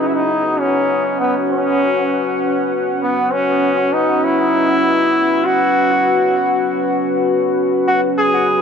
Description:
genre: ambient.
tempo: free time.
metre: none.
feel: none.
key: unclear.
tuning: A4 = 441 Hz.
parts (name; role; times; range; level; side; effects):
brilliant trombone; melody; 0.0-8.6 s; B3 to G#4; -16 LUFS; equal; vintage 12-bit sampler grit, dub echo.
deep dark ambient pad; sustained chords; 0.0-8.6 s; F#3 to F#5; -18 LUFS; left 1 dB; chorus, built-in reverb.
room: moderate spring reverb, RT60 1.9 s, small room ambience.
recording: echo-heavy mix.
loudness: -14 LUFS.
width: side -7 dB against mid.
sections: 0.0-8.6 A section.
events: none.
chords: 0.0 F#5; 7.9 C#5/F#.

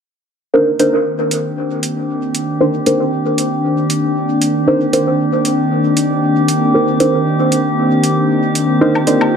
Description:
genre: dub techno.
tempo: 116 BPM.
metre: 4/4.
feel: swing 55% on 16ths.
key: C minor.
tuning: A4 = 435 Hz.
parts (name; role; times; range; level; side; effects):
airy breathy pad; sustained chords; 0.5-9.4 s; Eb3 to F4; -15 LUFS; left 1 dB; chorus.
deep mellow chord stab; stabs; 0.5-9.2 s; D4 to C5; -16 LUFS; right 1 dB; chorus, phaser, cassette tape, dub echo.
drifting glass-harmonics texture; texture; 1.5-9.4 s; G4; -22 LUFS; right 3 dB; chorus, built-in reverb.
electronic hi-hat; drums; 0.8-9.2 s; none; -21 LUFS; right 2 dB; none.
woodblock; percussion; 9.0-9.3 s; none; -20 LUFS; left 2 dB; dub echo.
room: moderate echo chamber reverb, RT60 1.3 s.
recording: none.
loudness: -12 LUFS.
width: side -7 dB against mid.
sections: 0.5-9.4 A section.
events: filter sweep on synth stab 0.5-9.4.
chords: 0.5 Cm9.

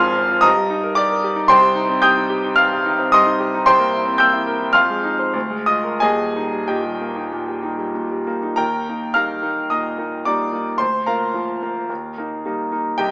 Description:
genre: classical, romantic character piece for solo piano.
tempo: 87-118 BPM.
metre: 4/4.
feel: rubato.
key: Eb major.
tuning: A4 = 439 Hz.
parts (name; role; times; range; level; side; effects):
bright concert grand piano; solo; 0.0-13.1 s; Eb1 to G6; -16 LUFS; equal; none.
room: moderate large studio reverb, RT60 0.8 s.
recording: small speaker sound.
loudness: -16 LUFS.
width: side -27 dB against mid.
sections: 0.0-8.6 A section; 8.6-13.1 B section.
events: none.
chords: 0.4 Eb/G; 1.5 Cm; 3.7 C7; 4.8 Fm7; 5.3 Bb7/D; 6.0 Eb; 10.8 Bb/D; 11.9 Eb.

